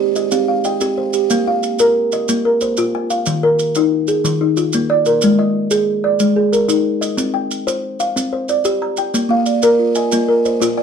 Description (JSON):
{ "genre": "southern african traditional, mbira-style interlocking cycle", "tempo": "122 BPM (dotted quarters)", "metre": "12/8", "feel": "straight", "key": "Bb mixolydian", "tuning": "A4 = 442 Hz", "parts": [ { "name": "buzzing kalimba", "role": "arpeggios", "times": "0.0-1.6, 9.3-10.8 s", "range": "Bb3 to Ab5", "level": "-20 LUFS", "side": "right 7 dB", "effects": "none" }, { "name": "kalimba", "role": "arpeggios", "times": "0.0-10.8 s", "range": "Eb3 to Bb5", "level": "-15 LUFS", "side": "left 1 dB", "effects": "none" }, { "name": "maracas", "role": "percussion", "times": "0.2-10.8 s", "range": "none", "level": "-25 LUFS", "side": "right 4 dB", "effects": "none" } ], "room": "moderate studio reverb, RT60 0.6 s", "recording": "dark, warm production", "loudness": "-14 LUFS", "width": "side -7 dB against mid", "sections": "0.0-1.3 A section; 1.3-10.8 B section", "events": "none", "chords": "0.0 Cm; 1.3 Bb5; 3.3 Eb5; 5.2 Ab5; 7.2 C5; 9.1 Bb", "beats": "0.32 0.81 | 1.30 1.79 2.28 2.77 | 3.26 3.75 4.24 4.73 | 5.22 5.71 6.20 6.69 | 7.18 7.67 8.16 8.65 | 9.14 9.63 10.12 10.61" }